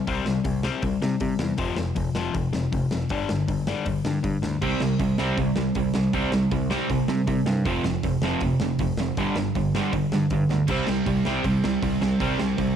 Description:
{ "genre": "punk rock", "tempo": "158 BPM", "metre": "4/4", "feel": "straight", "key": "unclear", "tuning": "A4 = 441 Hz", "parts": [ { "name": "overdriven semi-hollow guitar", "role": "riff", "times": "0.0-12.8 s", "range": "F2 to C4", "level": "-26 LUFS", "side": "left 6 dB", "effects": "cassette tape" }, { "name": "growling picked electric bass", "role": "bass", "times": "0.1-12.8 s", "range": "F1 to C3", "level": "-30 LUFS", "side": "right 1 dB", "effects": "overdrive" }, { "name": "big rock drum kit", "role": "drums", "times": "0.1-12.7 s", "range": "crash cymbal, hi-hat, kick drum, snare drum", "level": "-31 LUFS", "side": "right 1 dB", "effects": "none" }, { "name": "overdriven electric guitar", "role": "riff", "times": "4.6-12.8 s", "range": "F2 to C4", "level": "-25 LUFS", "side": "right 9 dB", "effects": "cassette tape" }, { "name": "high-gain distorted guitar", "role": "riff", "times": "10.7-12.8 s", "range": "C3 to C4", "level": "-34 LUFS", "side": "right 2 dB", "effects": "distortion, cassette tape" } ], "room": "small room ambience", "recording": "home recording on cassette", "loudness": "-22 LUFS", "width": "side -8 dB against mid", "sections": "0.0-12.8 A section", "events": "drum fill 10.5", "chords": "0.0 C5; 1.6 F5; 3.1 G5; 4.6 C5; 7.7 F5; 9.2 G5; 10.7 C5", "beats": "| 0.08 0.46 0.83 1.21 | 1.59 1.97 2.35 2.73 | 3.11 3.49 3.87 4.24 | 4.62 5.00 5.38 5.76 | 6.14 6.52 6.90 7.27 | 7.65 8.03 8.41 8.79 | 9.17 9.55 9.93 10.31 | 10.69 11.07 11.45 11.82 | 12.21 12.58" }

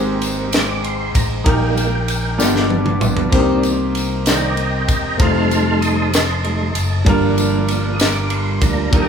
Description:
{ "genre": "slow gospel", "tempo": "64 BPM (dotted quarters)", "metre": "6/8", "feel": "straight", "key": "unclear", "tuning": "A4 = 440 Hz", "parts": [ { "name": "clear grand piano", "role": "accompaniment", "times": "0.0-9.1 s", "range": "G2 to D5", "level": "-20 LUFS", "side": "equal", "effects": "none" }, { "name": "tonewheel organ", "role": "sustained chords", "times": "0.0-9.1 s", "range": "D3 to F6", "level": "-21 LUFS", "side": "right 2 dB", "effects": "slow rotary speaker, chorus vibrato" }, { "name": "fingered electric bass", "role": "bass", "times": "0.0-9.1 s", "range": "Fb1 to Eb2", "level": "-21 LUFS", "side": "left 1 dB", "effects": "none" }, { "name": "tight funk drum kit", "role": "drums", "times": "0.2-9.1 s", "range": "kick drum, ride cymbal, snare drum, splash cymbal, toms", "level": "-20 LUFS", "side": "equal", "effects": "none" }, { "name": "tambourine", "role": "percussion", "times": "0.2-8.9 s", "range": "none", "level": "-29 LUFS", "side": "left 3 dB", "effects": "none" } ], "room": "moderate large studio reverb, RT60 0.9 s", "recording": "band playing live in one room", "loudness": "-14 LUFS", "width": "side -7 dB against mid", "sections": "0.0-9.1 A section", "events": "tonewheel organ solo 0.0-9.1; drum fill 2.4-3.3", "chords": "0.0 Abmaj7; 1.5 Eb/Bb; 2.4 G7; 3.3 Cm7; 5.2 F7; 7.1 Gm7", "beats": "0.53 | 1.46 2.40 | 3.33 4.27 | 5.20 6.13 | 7.07 8.00 | 8.94" }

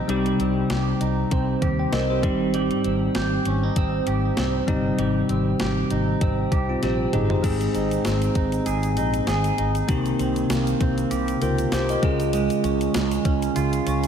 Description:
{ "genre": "1980s-style pop", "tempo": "98 BPM", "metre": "4/4", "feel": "swing 55% on 16ths", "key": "unclear", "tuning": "A4 = 437 Hz", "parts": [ { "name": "bell-like tine electric piano", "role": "accompaniment", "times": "0.0-14.1 s", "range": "Ab2 to G5", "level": "-24 LUFS", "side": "left 2 dB", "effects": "none" }, { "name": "clean electric guitar", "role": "riff", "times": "0.0-14.1 s", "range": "Eb3 to Ab4", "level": "-26 LUFS", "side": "right 5 dB", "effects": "lush chorus, ping-pong delay" }, { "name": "fretless electric bass", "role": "bass", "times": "0.1-14.1 s", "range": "G1 to Eb2", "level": "-26 LUFS", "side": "equal", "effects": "wide subtle chorus" }, { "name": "clean 12-bit digital drum machine", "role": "drums", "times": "0.1-14.1 s", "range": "crash cymbal, hi-hat, kick drum, snare drum, toms", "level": "-27 LUFS", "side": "equal", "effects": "overdrive" }, { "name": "egg shaker", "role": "percussion", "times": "7.4-14.1 s", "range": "none", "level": "-44 LUFS", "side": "right 9 dB", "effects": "none" } ], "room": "wet lush hall reverb, RT60 1.8 s, digital ambience", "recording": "dreamy mix soaked in reverb", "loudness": "-20 LUFS", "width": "side -8 dB against mid", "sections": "0.0-7.4 A section; 7.4-14.1 B section", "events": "drum fill 6.8-7.4", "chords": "0.0 Cm; 2.2 Abmaj7; 7.4 Ab; 9.9 Cm7; 12.0 Db", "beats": "| 0.09 0.70 1.31 1.93 | 2.54 3.15 3.76 4.38 | 4.99 5.60 6.21 6.83 | 7.44 8.05 8.66 9.27 | 9.89 10.50 11.11 11.72 | 12.34 12.95 13.56" }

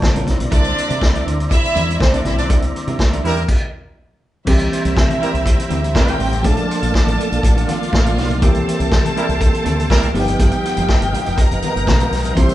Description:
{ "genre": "disco", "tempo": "122 BPM", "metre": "4/4", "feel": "straight", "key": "unclear", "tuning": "A4 = 444 Hz", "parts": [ { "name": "electric guitar at the edge of break-up", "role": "accompaniment", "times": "0.0-12.5 s", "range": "G3 to C5", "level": "-28 LUFS", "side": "right 6 dB", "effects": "spring reverb" }, { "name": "tine electric piano", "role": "accompaniment", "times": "0.0-12.5 s", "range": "C#3 to A5", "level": "-24 LUFS", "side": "left 2 dB", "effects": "none" }, { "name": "mellow tonewheel organ", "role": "sustained chords", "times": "0.0-12.5 s", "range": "Bb3 to C6", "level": "-27 LUFS", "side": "right 1 dB", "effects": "chorus vibrato, slow rotary speaker" }, { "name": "vintage drum kit", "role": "drums", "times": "0.0-12.5 s", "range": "crash cymbal, hi-hat, kick drum, snare drum", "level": "-17 LUFS", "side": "equal", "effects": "none" }, { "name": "congas", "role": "percussion", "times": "0.0-12.5 s", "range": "none", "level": "-29 LUFS", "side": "left 4 dB", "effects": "none" }, { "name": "fingered electric bass", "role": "bass", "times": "0.2-12.5 s", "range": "F1 to C3", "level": "-22 LUFS", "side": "equal", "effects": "none" }, { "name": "warm studio violin section", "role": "second line", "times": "0.5-12.5 s", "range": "C4 to C6", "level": "-22 LUFS", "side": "equal", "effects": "none" }, { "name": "warm horn section", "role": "stabs", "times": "3.2-6.2, 9.2-10.1 s", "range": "G3 to Bb4", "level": "-23 LUFS", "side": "right 3 dB", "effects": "none" } ], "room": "moderate large studio reverb, RT60 0.9 s", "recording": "band playing live in one room, nothing above 11.0 kHz", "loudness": "-14 LUFS", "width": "side -14 dB against mid", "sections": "0.0-4.5 A section; 4.5-12.5 B section", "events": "tine electric piano fill 0.0-0.5; band accent 2.5-4.5; stop 3.5-4.5", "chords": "0.3 C9; 4.5 C7; 6.4 Bbmaj7; 8.4 C7; 10.1 G7alt", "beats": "0.02 | 0.52 1.01 1.51 2.00 | 2.50 2.99 3.48 3.98 | 4.47 4.96 5.46 5.95 | 6.45 6.94 7.43 7.93 | 8.42 8.91 9.41 9.90 | 10.39 10.89 11.38 11.87 | 12.37" }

